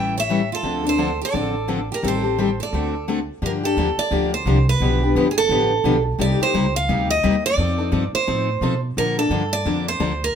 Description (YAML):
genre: acoustic string swing (jazz manouche)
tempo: 173 BPM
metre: 4/4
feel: swing 60% on 8ths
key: D minor, G minor from 3.4 s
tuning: A4 = 441 Hz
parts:
  - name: picked steel-string acoustic guitar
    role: melody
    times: 0.0-10.4 s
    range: Ab4 to G5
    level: -22 LUFS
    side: right 3 dB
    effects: none
  - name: picked steel-string acoustic guitar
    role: second line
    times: 0.0-3.0 s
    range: F4 to E5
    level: -29 LUFS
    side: right 7 dB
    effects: none
  - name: picked steel-string acoustic guitar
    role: accompaniment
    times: 0.0-10.1 s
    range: C3 to A4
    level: -22 LUFS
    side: left 4 dB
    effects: none
  - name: upright bass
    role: bass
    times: 0.0-10.3 s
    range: G1 to B2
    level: -24 LUFS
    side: right 1 dB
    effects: none
room: moderate studio reverb, RT60 0.8 s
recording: minimal, uncompressed stereo recording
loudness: -18 LUFS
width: side -8 dB against mid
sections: 0.0-3.4 A section; 3.4-10.4 B section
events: none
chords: 0.0 A7; 0.6 Dm7; 2.0 Am7b5; 2.7 D7; 3.4 Gm7; 4.8 G7; 6.2 Cm7; 7.6 F7; 9.0 Bbmaj7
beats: 0.29 | 0.64 0.98 1.33 1.68 | 2.03 2.38 2.72 3.07 | 3.42 3.77 4.11 4.46 | 4.81 5.15 5.50 5.85 | 6.19 6.54 6.89 7.23 | 7.58 7.93 8.27 8.62 | 8.97 9.31 9.66 10.01